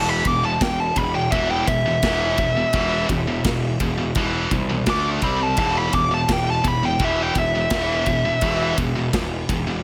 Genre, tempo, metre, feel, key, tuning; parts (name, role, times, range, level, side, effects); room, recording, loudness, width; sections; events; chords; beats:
heavy metal; 84 BPM; 4/4; straight; E minor; A4 = 436 Hz
high-gain lead guitar; melody; 0.0-8.8 s; E5 to D6; -25 LUFS; equal; distortion, delay
high-gain distorted guitar; riff; 0.0-9.8 s; E2 to D4; -26 LUFS; equal; distortion
fuzz picked electric bass; bass; 0.0-9.8 s; E1 to D2; -28 LUFS; equal; overdrive
big rock drum kit; drums; 0.2-9.7 s; kick drum, ride cymbal, snare drum; -28 LUFS; equal
little or no reverb; -21 LUFS; mono
0.0-9.8 A section
lead electric guitar solo 0.0-9.8
0.0 E5; 4.9 D5; 5.2 C5; 5.6 E5
0.61 1.32 2.03 | 2.74 3.45 4.16 4.87 | 5.58 6.29 7.00 7.71 | 8.43 9.14